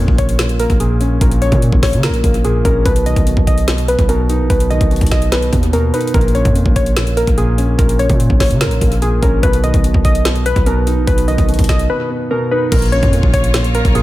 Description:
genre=hip hop, trap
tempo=146 BPM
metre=4/4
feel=half-time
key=Bb phrygian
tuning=A4 = 441 Hz
part: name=dark grand piano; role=accompaniment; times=0.0-14.0 s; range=Bb2 to D#4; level=-19 LUFS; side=equal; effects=low-pass filter
part: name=hard-hitting 808-style bass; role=bass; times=0.0-14.0 s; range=Bb1 to Db3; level=-16 LUFS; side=equal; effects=none
part: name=trap drum kit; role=drums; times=0.1-14.0 s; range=crash cymbal, hi-hat, kick drum, snare drum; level=-16 LUFS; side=equal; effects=none
part: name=warbly dusty pluck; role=melody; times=0.2-14.0 s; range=Ab4 to D#5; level=-19 LUFS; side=left 1 dB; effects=chorus, low-pass filter, analog delay
part: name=clear studio string section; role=sustained chords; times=12.7-14.0 s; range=Bb3 to Db5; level=-24 LUFS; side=left 2 dB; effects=none
room=little or no reverb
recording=echo-heavy mix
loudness=-11 LUFS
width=side -16 dB against mid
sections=0.0-12.7 A section; 12.7-14.0 B section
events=break 11.9-12.7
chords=0.0 Bbm; 2.9 B; 6.1 Bbm; 9.4 B; 12.7 Bbm

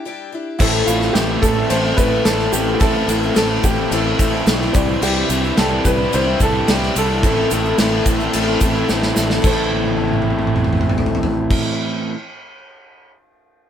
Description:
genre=folk rock and heartland rock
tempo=109 BPM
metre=4/4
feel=straight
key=A minor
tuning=A4 = 440 Hz
part: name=picked twelve-string acoustic guitar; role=accompaniment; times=0.0-12.2 s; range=A2 to A4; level=-24 LUFS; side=left 5 dB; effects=none
part: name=bright baby grand piano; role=melody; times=0.6-11.6 s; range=E4 to C5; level=-23 LUFS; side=right 1 dB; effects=none
part: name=dark upright piano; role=accompaniment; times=0.6-11.6 s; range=E4 to D5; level=-31 LUFS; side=equal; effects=none
part: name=crunchy overdriven guitar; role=riff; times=0.6-12.1 s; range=A2 to E4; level=-21 LUFS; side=right 1 dB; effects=none
part: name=fingered electric bass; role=bass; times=0.6-11.6 s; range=A1 to C2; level=-23 LUFS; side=equal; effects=none
part: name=loose indie drum kit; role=drums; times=0.6-13.1 s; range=crash cymbal, kick drum, ride cymbal, snare drum, toms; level=-19 LUFS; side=equal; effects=none
part: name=egg shaker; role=percussion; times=0.6-11.6 s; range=none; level=-31 LUFS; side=right 6 dB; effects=none
room=light reverb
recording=band playing live in one room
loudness=-15 LUFS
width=side -9 dB against mid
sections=0.0-9.4 A section; 9.4-11.7 B section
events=drum fill 8.9-9.4, 9.7-11.5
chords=0.0 Cadd9 (rootless); 0.6 Am; 4.7 Cadd9; 7.2 Am

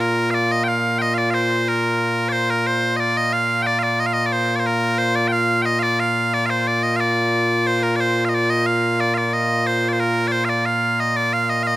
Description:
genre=scottish traditional, Scottish pipe music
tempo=90 BPM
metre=2/4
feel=straight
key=Bb major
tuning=A4 = 440 Hz
part: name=loud bright bagpipes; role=solo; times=0.0-11.8 s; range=Bb2 to G5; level=-17 LUFS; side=equal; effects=none
room=light reverb, small room ambience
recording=rough home demo mix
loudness=-17 LUFS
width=side -16 dB against mid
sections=0.0-2.3 A section; 2.3-11.8 B section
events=none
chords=none

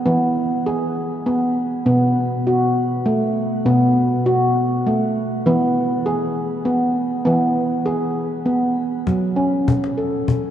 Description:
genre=world meditative, meditative tuned percussion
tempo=100 BPM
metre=3/4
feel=swing 55% on 16ths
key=unclear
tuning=A4 = 440 Hz
part: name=handpan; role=arpeggios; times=0.0-10.5 s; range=B2 to A4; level=-17 LUFS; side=equal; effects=shimmer reverb
part: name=cajon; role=percussion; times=9.1-10.5 s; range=none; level=-22 LUFS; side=left 3 dB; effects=none
room=wet cathedral reverb, RT60 4.5 s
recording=dark, warm production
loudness=-17 LUFS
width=side -10 dB against mid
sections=0.0-9.1 A section; 9.1-10.5 B section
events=none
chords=0.0 E; 1.9 B5; 5.5 E; 9.1 F#m

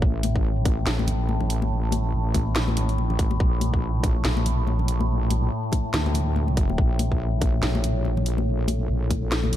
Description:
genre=deep dubstep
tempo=142 BPM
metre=4/4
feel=swing 58% on 16ths, half-time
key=unclear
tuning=A4 = 442 Hz
part: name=overtone-sweeping drone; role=sustained chords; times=0.0-9.6 s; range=A2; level=-29 LUFS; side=equal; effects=chorus, built-in reverb
part: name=wobble bass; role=bass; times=0.0-9.6 s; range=A1 to D2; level=-24 LUFS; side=equal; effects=chorus
part: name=electronic kick drum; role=drums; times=0.0-9.2 s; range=none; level=-23 LUFS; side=equal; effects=none
part: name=garage drum kit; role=drums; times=0.2-9.6 s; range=hi-hat, snare drum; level=-30 LUFS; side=equal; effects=none
part: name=congas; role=percussion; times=0.2-9.6 s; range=none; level=-32 LUFS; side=left 5 dB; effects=none
room=little or no reverb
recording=dark, warm production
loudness=-21 LUFS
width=side -12 dB against mid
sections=0.0-9.6 A section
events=none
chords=0.0 N.C.; 3.4 Bb

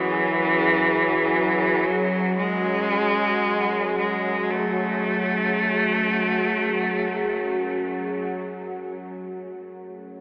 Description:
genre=dark ambient drone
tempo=free time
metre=none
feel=none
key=F# minor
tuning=A4 = 439 Hz
part: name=rich cello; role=melody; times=0.0-7.7 s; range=E3 to A3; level=-24 LUFS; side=equal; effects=dub echo
part: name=deep dark ambient pad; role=sustained chords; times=0.0-10.2 s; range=F#3 to C#5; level=-30 LUFS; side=equal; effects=chorus, built-in reverb
part: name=bowed-like drone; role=drone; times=0.0-10.2 s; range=F#2 to F#3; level=-31 LUFS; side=equal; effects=built-in reverb
room=wet plate reverb, RT60 3.2 s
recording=echo-heavy mix, AM radio sound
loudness=-23 LUFS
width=mono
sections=0.0-8.8 A section; 8.8-10.2 B section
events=none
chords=0.0 F#sus2; 8.8 F#madd9

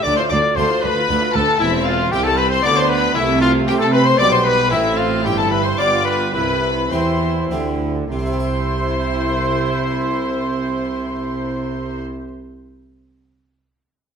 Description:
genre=classical, baroque-style concerto movement with solo episodes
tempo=97-116 BPM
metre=3/4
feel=straight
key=C major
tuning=A4 = 440 Hz
part: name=clear trumpet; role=melody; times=0.0-12.0 s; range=E4 to D5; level=-21 LUFS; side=left 1 dB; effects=none
part: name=rich chamber violin section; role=melody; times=0.0-12.0 s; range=E5 to D6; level=-24 LUFS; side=left 5 dB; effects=none
part: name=rich chamber violin section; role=second line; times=0.0-12.0 s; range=E4 to D5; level=-23 LUFS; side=left 2 dB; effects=none
part: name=harpsichord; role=accompaniment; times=0.0-12.3 s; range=C2 to E5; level=-27 LUFS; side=equal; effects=none
part: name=warm chamber viola section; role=accompaniment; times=0.0-12.0 s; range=G3 to F4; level=-26 LUFS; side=right 1 dB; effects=none
part: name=rich chamber double bass section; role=bass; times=0.1-12.0 s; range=E1 to C3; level=-24 LUFS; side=right 3 dB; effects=none
part: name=warm chamber cello section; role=bass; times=0.1-12.0 s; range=C2 to C4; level=-24 LUFS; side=right 3 dB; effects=none
room=wet recital hall reverb, RT60 1.3 s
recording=none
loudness=-15 LUFS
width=side -7 dB against mid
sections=0.0-8.1 A section; 8.1-11.8 B section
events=slowing down 3.9-8.1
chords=0.1 Dm; 1.6 C/E; 2.6 Bdim/D; 3.2 Am/C; 4.2 G/B; 4.7 Am; 5.2 C/G; 5.8 G7; 6.3 C

